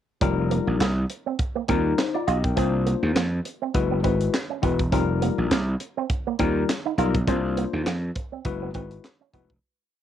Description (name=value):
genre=early-eighties boogie funk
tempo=102 BPM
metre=4/4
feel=swing 56% on 16ths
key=F dorian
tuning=A4 = 439 Hz
part: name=tine electric piano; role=accompaniment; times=0.2-9.5 s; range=G3 to G5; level=-27 LUFS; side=left 9 dB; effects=slow stereo tremolo, cassette tape
part: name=electric guitar with an envelope filter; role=riff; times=0.2-9.4 s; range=Bb3 to F4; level=-29 LUFS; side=right 12 dB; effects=analog chorus, cassette tape
part: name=gritty slap bass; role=bass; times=0.2-9.6 s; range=Fb1 to F2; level=-24 LUFS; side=right 1 dB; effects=overdrive
part: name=tight funk drum kit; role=drums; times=0.2-9.6 s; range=handclaps, hi-hat, kick drum, snare drum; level=-27 LUFS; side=right 1 dB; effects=cassette tape
room=light reverb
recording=home recording on cassette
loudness=-22 LUFS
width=side -10 dB against mid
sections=0.2-9.6 verse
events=fade-out 7.3-9.6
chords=0.2 F9sus4; 2.6 C9sus4; 3.7 Gb9sus4; 4.9 F9sus4; 7.3 C9sus4; 8.5 Gb9sus4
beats=| 0.22 0.81 1.39 1.98 | 2.57 3.16 3.75 4.33 | 4.92 5.51 6.10 6.69 | 7.28 7.87 8.45 9.04